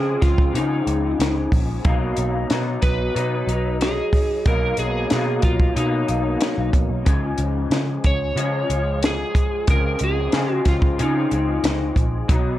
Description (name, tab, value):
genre	indie pop, bedroom pop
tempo	92 BPM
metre	4/4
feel	straight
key	Db major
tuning	A4 = 440 Hz
part	electric slide guitar	melody	0.0-11.9 s	Eb4 to Db5	-25 LUFS	equal	wide subtle chorus, tape echo, plate reverb
part	electric guitar through a small old amp	accompaniment	0.0-12.6 s	Cb3 to Eb4	-25 LUFS	left 2 dB	ensemble chorus, warbly pitch drift, plate reverb
part	vintage muted picked electric bass	bass	0.0-12.6 s	Bb1 to Db3	-24 LUFS	equal	none
part	compact cocktail drum kit	drums	0.2-12.4 s	hi-hat, kick drum, snare drum	-20 LUFS	equal	none
room	light reverb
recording	cassette tape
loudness	-18 LUFS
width	side -14 dB against mid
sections	0.0-12.6 A section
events	none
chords	0.0 Dbmaj7; 1.9 Cbmaj7; 7.1 Dbmaj7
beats	0.55 1.20 | 1.85 2.50 3.16 3.81 | 4.46 5.12 5.77 6.42 | 7.07 7.72 8.38 9.03 | 9.68 10.33 10.99 11.64 | 12.29